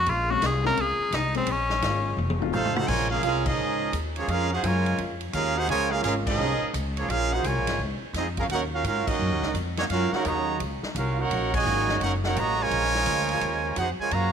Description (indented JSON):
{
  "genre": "jazz, big band swing",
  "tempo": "171 BPM",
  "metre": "4/4",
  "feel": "swing 64% on 8ths",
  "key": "Bb minor",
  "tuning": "A4 = 438 Hz",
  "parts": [
    { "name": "edgy tenor saxophone", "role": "melody", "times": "0.0-2.2 s", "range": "C4 to Bb4", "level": "-25 LUFS", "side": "left 2 dB", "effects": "tape echo" },
    { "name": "upright bass", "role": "bass", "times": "0.0-14.3 s", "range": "F1 to Ab2", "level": "-29 LUFS", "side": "left 1 dB", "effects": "none" },
    { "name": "warm trombone section", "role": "sustained chords", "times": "0.1-13.4 s", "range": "Db3 to F4", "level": "-36 LUFS", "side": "left 1 dB", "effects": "none" },
    { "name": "swinging big-band drum kit", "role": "drums", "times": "0.1-14.2 s", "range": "crash cymbal, hi-hat, kick drum, ride cymbal, snare drum, toms", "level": "-33 LUFS", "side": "left 1 dB", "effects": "none" },
    { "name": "warm concert grand piano", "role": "accompaniment", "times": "0.3-2.5 s", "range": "Gb3 to Ab4", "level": "-32 LUFS", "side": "left 15 dB", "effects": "none" },
    { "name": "brilliant trumpet section", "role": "melody", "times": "2.5-14.3 s", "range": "Bb3 to Bb5", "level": "-26 LUFS", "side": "right 1 dB", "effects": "none" },
    { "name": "clear trombone section", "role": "second line", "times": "2.5-14.3 s", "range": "Bb2 to Gb4", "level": "-31 LUFS", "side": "right 11 dB", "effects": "none" }
  ],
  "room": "light reverb, small room ambience",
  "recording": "1960s-style stereo with parts hard left and right",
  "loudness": "-23 LUFS",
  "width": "side -7 dB against mid",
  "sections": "0.0-2.9 A section; 2.9-14.3 B section",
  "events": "tenor saxophone solo 0.0-2.9; drum fill 2.2-2.9; band accent 3.4, 6.2, 9.0, 11.5",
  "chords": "0.1 Bbm7; 2.2 F7b9; 2.9 Bbm7; 8.5 Ebm7; 12.7 Bbm7"
}